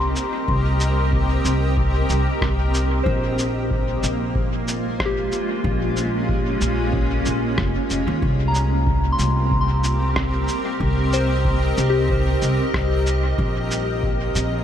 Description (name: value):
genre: ambient dub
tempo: 93 BPM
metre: 4/4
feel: swing 54% on 16ths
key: unclear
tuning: A4 = 440 Hz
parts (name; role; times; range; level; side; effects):
- granular cloud pad; sustained chords; 0.0-14.6 s; Ab3 to Eb5; -24 LUFS; right 1 dB; built-in reverb
- soft synth bell; arpeggios; 0.0-14.6 s; G4 to C6; -27 LUFS; left 2 dB; chorus, low-pass filter, dub echo
- upright bass; bass; 0.0-14.6 s; F1 to Eb2; -22 LUFS; equal; tube saturation
- electronic cabasa and rim click; drums; 0.2-14.5 s; none; -30 LUFS; equal; dub echo
- electronic kick drum; drums; 0.5-14.2 s; none; -26 LUFS; equal; none
room: light reverb, digital ambience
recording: none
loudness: -18 LUFS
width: side -9 dB against mid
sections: 0.0-14.6 A section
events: none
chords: 0.0 Cm7; 3.1 Bbm7; 8.2 Cm7; 13.4 Bbm7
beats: | 0.48 1.13 1.77 2.42 | 3.06 3.71 4.36 5.00 | 5.65 6.29 6.94 7.58 | 8.23 8.87 9.52 10.16 | 10.81 11.45 12.10 12.74 | 13.39 14.03